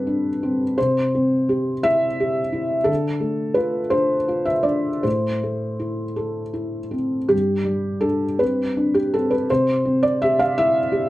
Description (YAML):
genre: neoclassical minimalist piano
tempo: 52-58 BPM (dotted quarters)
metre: 6/8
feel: rubato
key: C major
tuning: A4 = 440 Hz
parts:
  - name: felt-muted upright piano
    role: solo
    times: 0.0-11.1 s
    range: G2 to F5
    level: -19 LUFS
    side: equal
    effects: none
room: wet small room reverb, RT60 0.5 s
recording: none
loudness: -19 LUFS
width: side -16 dB against mid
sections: 0.0-11.1 A section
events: none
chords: 0.0 Gsus4; 0.8 C; 2.9 Dm; 5.1 Am; 7.3 Gsus4; 9.5 C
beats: | 0.77 1.85 | 2.89 3.94 | 5.05 6.18 | 7.32 8.41 | 9.49 10.55